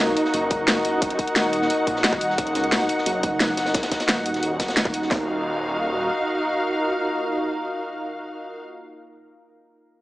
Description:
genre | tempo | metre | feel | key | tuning
dark technical drum and bass | 176 BPM | 4/4 | straight | Eb minor | A4 = 440 Hz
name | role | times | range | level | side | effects
deep dark ambient pad | sustained chords | 0.0-8.6 s | Eb4 to F5 | -27 LUFS | equal | chorus, built-in reverb, sidechain pumping
snarling distorted saw bass | bass | 0.0-6.1 s | Eb1 to Db2 | -31 LUFS | equal | distortion, tube saturation
drum and bass drum kit | drums | 0.0-5.0 s | hi-hat, snare drum | -22 LUFS | equal | overdrive, studio ambience
muted studio string section | texture | 0.0-8.6 s | Eb4 to Gb5 | -25 LUFS | equal | sidechain pumping
crunchy breakbeat drum kit | drums | 0.1-5.1 s | hi-hat, snare drum | -31 LUFS | equal | high-pass filter on hats, studio ambience, high-pass filter on snare, high-pass filter on room
drum and bass drum kit | drums | 0.5-5.2 s | kick drum, snare drum | -26 LUFS | equal | overdrive, studio ambience
room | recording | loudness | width
moderate lush hall reverb, RT60 2.1 s | small speaker sound | -20 LUFS | side -16 dB against mid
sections
0.0-5.1 A section; 5.1-7.8 B section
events
filter sweep on detuned saw bass 0.0-5.1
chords
0.0 Ebm; 5.1 Ebmadd9

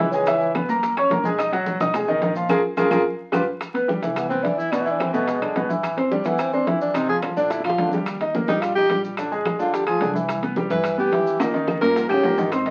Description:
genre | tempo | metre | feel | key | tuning
Afro-Cuban jazz | 216 BPM | 4/4 | straight | unclear | A4 = 441 Hz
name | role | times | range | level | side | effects
breathy tenor saxophone | melody | 0.0-0.5, 4.2-12.7 s | G#3 to B4 | -25 LUFS | equal | none
growling trombone | second line | 0.0-0.5 s | E3 to G#3 | -32 LUFS | equal | none
clear grand piano | accompaniment | 0.0-12.7 s | Bb2 to D#6 | -25 LUFS | equal | none
upright bass | bass | 0.0-12.7 s | G1 to B2 | -38 LUFS | equal | none
bongos | percussion | 0.0-12.7 s | none | -36 LUFS | equal | none
congas | percussion | 0.1-12.7 s | none | -32 LUFS | equal | none
maracas | percussion | 0.1-12.7 s | none | -52 LUFS | equal | none
claves | percussion | 0.3-12.7 s | none | -40 LUFS | equal | none
timbales | percussion | 0.3-12.7 s | none | -32 LUFS | equal | none
room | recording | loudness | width
wet studio reverb, RT60 0.6 s | very old 78 rpm record, vinyl crackle | -22 LUFS | mono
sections
0.0-3.6 A section; 3.6-12.5 B section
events
drum fill 2.5-3.6, 7.5-8.1, 11.4-12.5; band accent 2.5-3.6; tenor saxophone solo 3.6-12.7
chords
0.3 Dbm7; 0.8 Gb; 1.4 B6; 2.5 Bb5; 3.1 G7; 3.6 Cmaj7; 4.7 E7; 5.8 Am7; 7.0 F5; 7.5 Bb; 8.1 Eb; 9.2 Bb9; 10.3 Cmaj7; 11.4 Eb7

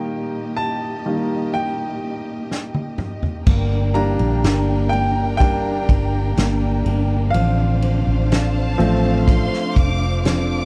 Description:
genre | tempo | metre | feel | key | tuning
pop ballad | 62 BPM | 4/4 | straight | G minor | A4 = 440 Hz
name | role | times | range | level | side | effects
clear grand piano | accompaniment | 0.0-10.7 s | Eb3 to Bb5 | -25 LUFS | equal | none
warm studio string section | sustained chords | 0.0-10.7 s | Bb2 to G5 | -31 LUFS | equal | none
unplugged drum kit | drums | 2.5-10.5 s | crash cymbal, kick drum, ride cymbal, snare drum, toms | -21 LUFS | equal | none
fingerpicked steel-string acoustic guitar | arpeggios | 3.5-10.7 s | G2 to Bb4 | -28 LUFS | equal | none
vintage muted fingered electric bass | bass | 3.5-10.7 s | F1 to Bb1 | -22 LUFS | equal | none
warm studio violin section | second line | 8.3-10.7 s | A5 to D6 | -32 LUFS | equal | none
room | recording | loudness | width
little or no reverb | none | -19 LUFS | mono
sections
0.0-3.5 A section; 3.5-10.7 B section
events
grand piano solo 0.0-3.5, 3.5-10.7; drum fill 2.5-3.5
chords
0.0 Eb; 3.5 Gm; 7.3 Dm7/A

